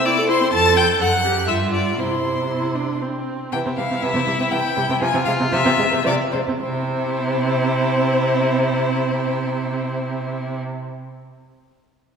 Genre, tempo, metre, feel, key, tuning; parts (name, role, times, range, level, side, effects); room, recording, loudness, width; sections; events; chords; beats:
quick classical-period movement for string quartet; 106-128 BPM; 3/4; rubato; C major; A4 = 440 Hz
warm violin; melody; 0.0-10.6 s; C5 to A6; -23 LUFS; left 5 dB
clear violin; second line; 0.0-10.6 s; E4 to A5; -25 LUFS; left 1 dB
warm viola; accompaniment; 0.0-10.6 s; E3 to A4; -23 LUFS; right 2 dB
rich cello; bass; 0.5-10.6 s; F2 to C3; -24 LUFS; right 3 dB
wet concert hall reverb, RT60 2.0 s; minimal, uncompressed stereo recording; -18 LUFS; side -6 dB against mid
0.0-3.5 A section; 3.5-6.6 B section; 6.6-9.9 C section
slowing down 2.8-6.6
0.0 Am; 0.5 Fadd9; 1.0 F#m; 1.5 G5; 2.0 C; 5.0 F5/C; 6.6 C
0.05 | 0.52 0.99 1.48 | 1.98 2.50 3.01 | 3.53 4.02 4.52 | 5.01 5.53 6.06 | 6.62 7.15 7.69 | 8.24 8.79 9.34